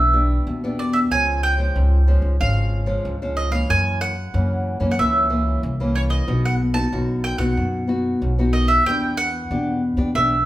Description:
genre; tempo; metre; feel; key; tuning
samba and choro; 93 BPM; 4/4; straight; unclear; A4 = 440 Hz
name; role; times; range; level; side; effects
mandolin; melody; 0.0-10.5 s; C#5 to A5; -22 LUFS; right 2 dB; none
nylon-string guitar; accompaniment; 0.0-10.5 s; F#2 to G4; -24 LUFS; left 1 dB; none
upright bass; bass; 0.0-10.5 s; G#1 to F#2; -21 LUFS; equal; none
room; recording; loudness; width
moderate large studio reverb, RT60 1.0 s; band playing live in one room; -18 LUFS; side -14 dB against mid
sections
0.0-10.5 A section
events
none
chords
0.0 Em7; 1.1 C#; 3.7 F#7; 6.3 B; 8.9 Em7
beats
0.47 | 1.11 1.76 2.41 3.05 | 3.70 4.34 4.99 5.63 | 6.28 6.93 7.57 8.22 | 8.86 9.51 10.15

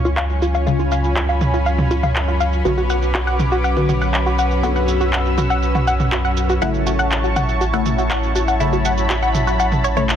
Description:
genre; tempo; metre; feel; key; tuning
melodic techno; 121 BPM; 4/4; straight; unclear; A4 = 440 Hz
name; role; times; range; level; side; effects
lush unison pad; sustained chords; 0.0-10.2 s; E4 to E6; -24 LUFS; equal; chorus
filtered dub chord stab; stabs; 0.0-10.1 s; C#3 to F#4; -24 LUFS; left 3 dB; phaser, lush chorus, tape echo
round analog bass; bass; 0.0-10.2 s; A1 to C#2; -20 LUFS; equal; none
bowed-like drone; drone; 0.0-10.2 s; F#2 to C#4; -27 LUFS; equal; built-in reverb
house drum kit; drums; 0.0-10.2 s; handclaps, shaker, toms; -23 LUFS; right 1 dB; low-pass filter on perc, low-pass filter on snare, low-pass filter on toms
tight sequenced synth; arpeggios; 0.1-10.0 s; E#4 to F#5; -22 LUFS; left 1 dB; chorus, tape echo
room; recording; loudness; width
light reverb, digital ambience; dense, heavily limited modern master; -16 LUFS; side -9 dB against mid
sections
0.0-10.2 A section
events
filter sweep on synth arpeggio sound 0.0-10.2; filter sweep on synth stab 0.0-10.2; filter sweep on analog synth pad 0.0-10.2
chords
0.0 C#; 2.7 Bm; 6.6 A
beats
0.17 | 0.67 1.16 1.66 2.16 | 2.65 3.15 3.64 4.14 | 4.64 5.13 5.63 6.12 | 6.62 7.12 7.61 8.11 | 8.60 9.10 9.59 10.09

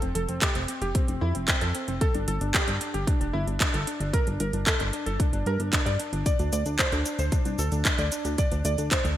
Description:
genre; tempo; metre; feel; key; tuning
italo disco; 113 BPM; 4/4; straight; unclear; A4 = 442 Hz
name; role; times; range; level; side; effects
clear electric grand piano; melody; 0.0-9.2 s; C4 to D5; -30 LUFS; equal; analog chorus, digital delay
chorused synth bass; bass; 0.0-9.2 s; F1 to G2; -28 LUFS; equal; none
house drum kit; drums; 0.0-9.2 s; cabasa, handclaps, hi-hat; -28 LUFS; right 1 dB; gated reverb
electronic kick drum; drums; 0.4-9.0 s; none; -26 LUFS; equal; none
room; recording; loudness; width
light reverb; bright 1980s-style digital production; -23 LUFS; side -12 dB against mid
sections
0.0-9.2 A section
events
none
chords
0.0 F5; 2.0 G5; 6.3 D5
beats
0.42 0.95 1.48 | 2.01 2.54 3.07 3.60 | 4.13 4.67 5.20 5.73 | 6.26 6.79 7.32 7.85 | 8.38 8.91

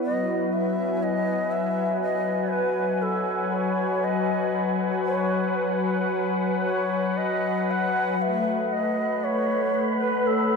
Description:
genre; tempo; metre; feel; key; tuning
ambient; 59 BPM; 4/4; straight; unclear; A4 = 443 Hz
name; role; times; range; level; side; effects
long shakuhachi; melody; 0.0-10.6 s; A4 to F#5; -27 LUFS; right 1 dB; diffuse ambient delay
warm analog pad; sustained chords; 0.0-10.6 s; F#3 to G#5; -24 LUFS; left 2 dB; chorus
wind-like tuned noise texture; texture; 8.6-10.6 s; B4 to B5; -29 LUFS; left 1 dB; built-in reverb
room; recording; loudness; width
wet huge ambient reverb, RT60 7.9 s; none; -22 LUFS; side -4 dB against mid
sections
0.0-8.2 A section; 8.2-10.6 B section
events
filter sweep on analog synth pad 0.0-8.2, 8.2-10.6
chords
0.1 G#m7; 8.2 A69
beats
| 0.06 1.05 2.06 3.07 | 4.08 5.09 6.11 7.15 | 8.19 9.21 10.23

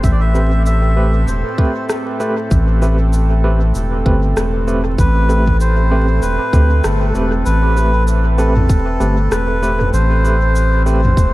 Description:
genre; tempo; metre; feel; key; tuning
ambient dub; 97 BPM; 4/4; swing 58% on 16ths; A minor; A4 = 440 Hz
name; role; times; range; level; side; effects
melodica; melody; 0.0-11.3 s; A4 to E5; -21 LUFS; equal; dub echo
warm analog pad; sustained chords; 0.0-11.3 s; A2 to A4; -23 LUFS; right 2 dB; chorus
round analog bass; bass; 0.0-11.3 s; E1 to D2; -14 LUFS; equal; none
electronic kick drum; drums; 0.0-11.3 s; none; -14 LUFS; equal; none
organic electronic drum kit; drums; 0.0-11.3 s; cabasa, rim click, toms; -24 LUFS; equal; dub echo
overdriven tine electric piano; stabs; 0.3-11.0 s; A3 to B4; -22 LUFS; right 1 dB; fast tremolo, dub echo
room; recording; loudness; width
light reverb; vinyl crackle; -12 LUFS; side -18 dB against mid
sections
0.0-7.5 A section; 7.5-11.3 B section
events
band accent 6.8-7.2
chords
0.0 Am9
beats
| 0.04 0.66 1.27 1.89 | 2.51 3.13 3.75 4.37 | 4.99 5.61 6.22 6.84 | 7.46 8.08 8.70 9.32 | 9.93 10.55 11.17

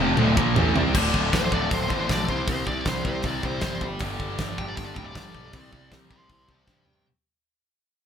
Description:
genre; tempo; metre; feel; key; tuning
heavy metal; 157 BPM; 4/4; straight; unclear; A4 = 440 Hz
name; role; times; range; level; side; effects
clear symphonic string section; sustained chords; 0.0-0.9 s; none; barely audible; none; none
scooped high-gain guitar; riff; 0.0-7.1 s; D2 to C4; -31 LUFS; right 8 dB; distortion
tight distorted guitar; riff; 0.0-7.1 s; D2 to C4; -28 LUFS; left 5 dB; distortion
fuzz picked electric bass; bass; 0.0-7.0 s; D1 to G2; -29 LUFS; equal; overdrive
modern studio drum kit; drums; 0.2-6.9 s; crash cymbal, hi-hat, kick drum, snare drum, toms; -26 LUFS; equal; none
high-gain lead guitar; melody; 1.4-7.0 s; C5 to C6; -32 LUFS; left 1 dB; distortion
room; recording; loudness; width
moderate studio ambience, RT60 0.5 s; band playing live in one room; -22 LUFS; side -8 dB against mid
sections
1.0-7.1 A section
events
drum fill 0.0-1.0, 6.7-7.1; fade-out 1.0-7.1; lead electric guitar solo 1.0-7.1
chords
0.0 Dm; 1.0 D5; 2.3 C5; 4.0 G5; 5.5 C5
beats
0.19 0.57 | 0.95 1.33 1.72 2.10 | 2.48 2.86 3.24 3.62 | 4.01 4.39 4.77 5.15 | 5.53 5.92 6.30 6.68

